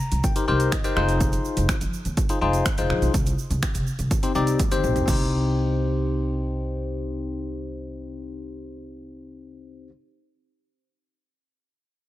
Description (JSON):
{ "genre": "dance-pop", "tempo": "124 BPM", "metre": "4/4", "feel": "straight", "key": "C minor", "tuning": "A4 = 439 Hz", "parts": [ { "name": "bell-like tine electric piano", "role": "accompaniment", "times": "0.0-9.9 s", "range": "C4 to Bb5", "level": "-26 LUFS", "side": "left 3 dB", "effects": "phaser, sidechain pumping" }, { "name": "egg shaker", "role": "percussion", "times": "0.0-5.3 s", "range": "none", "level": "-39 LUFS", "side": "right 11 dB", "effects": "none" }, { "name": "upright bass", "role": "bass", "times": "0.1-9.9 s", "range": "F1 to C3", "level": "-26 LUFS", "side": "equal", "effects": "sidechain pumping" }, { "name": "punchy analog drum machine", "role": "drums", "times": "0.1-5.2 s", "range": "crash cymbal, finger snaps, hi-hat, kick drum, toms", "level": "-25 LUFS", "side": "equal", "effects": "none" } ], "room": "little or no reverb", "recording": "none", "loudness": "-21 LUFS", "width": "side -15 dB against mid", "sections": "0.0-5.1 A section; 5.1-8.9 B section", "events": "tine electric piano fill 0.0-1.2; drum fill 4.6-5.1", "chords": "0.0 Cm7; 1.0 Fm7; 3.1 Cm", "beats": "0.24 0.72 | 1.21 1.69 2.17 2.66 | 3.14 3.62 4.11 4.59 | 5.08 5.56 6.04 6.53 | 7.01 7.50 7.98 8.46" }